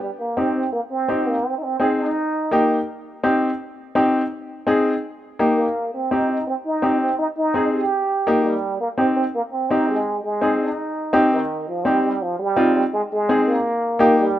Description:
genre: latin.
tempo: 167 BPM.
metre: 4/4.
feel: straight.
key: C minor.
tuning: A4 = 440 Hz.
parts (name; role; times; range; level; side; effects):
trombone with plunger mute; melody; 0.0-2.7, 5.6-14.4 s; Eb3 to G4; -22 LUFS; right 2 dB; none.
clear upright piano; accompaniment; 0.4-14.3 s; Bb3 to Ab4; -18 LUFS; left 1 dB; none.
room: light reverb, small room reverb.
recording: rough home demo mix.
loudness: -18 LUFS.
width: side -12 dB against mid.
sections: 0.0-11.5 A section; 11.5-14.4 B section.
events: none.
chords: 0.0 Cm; 1.5 Ab; 2.2 Eb; 2.9 Cm; 4.3 Ab; 5.0 Eb; 5.8 Cm; 7.2 Ab; 7.9 Eb; 8.6 Cm; 10.1 Ab; 10.8 Cm; 12.9 Ab; 13.7 Eb.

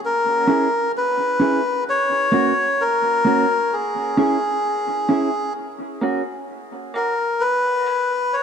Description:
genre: reggae.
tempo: 65 BPM.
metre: 4/4.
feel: straight.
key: C# dorian.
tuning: A4 = 440 Hz.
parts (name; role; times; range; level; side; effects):
melodica; melody; 0.1-8.4 s; G#4 to C#5; -19 LUFS; left 2 dB; dub echo.
mellow electric guitar; accompaniment; 0.5-8.1 s; A#3 to G#4; -23 LUFS; right 2 dB; high-pass filter, dub echo.
room: moderate plate reverb, RT60 2.6 s.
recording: dark, warm production.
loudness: -17 LUFS.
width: side -7 dB against mid.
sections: 0.0-8.4 A section.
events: filter sweep on clean electric guitar 3.7-8.4.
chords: 0.0 C#m; 1.9 F#; 3.7 C#m; 5.6 F#; 7.4 C#m.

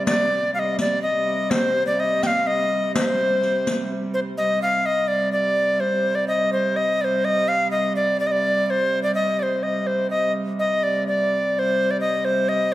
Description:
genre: medieval dance.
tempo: 126 BPM.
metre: 3/4.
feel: straight.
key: C minor.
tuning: A4 = 440 Hz.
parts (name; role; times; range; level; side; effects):
bright reedy tenor recorder; melody; 0.0-12.7 s; C5 to G5; -20 LUFS; left 1 dB; none.
dark hurdy-gurdy; drone; 0.0-12.7 s; C3 to G3; -27 LUFS; right 2 dB; none.
riq; percussion; 0.1-3.9 s; none; -27 LUFS; equal; none.
room: wet recital hall reverb, RT60 1.6 s.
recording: none.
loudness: -19 LUFS.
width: side -15 dB against mid.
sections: 0.0-4.4 A section; 4.4-12.7 B section.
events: none.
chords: none.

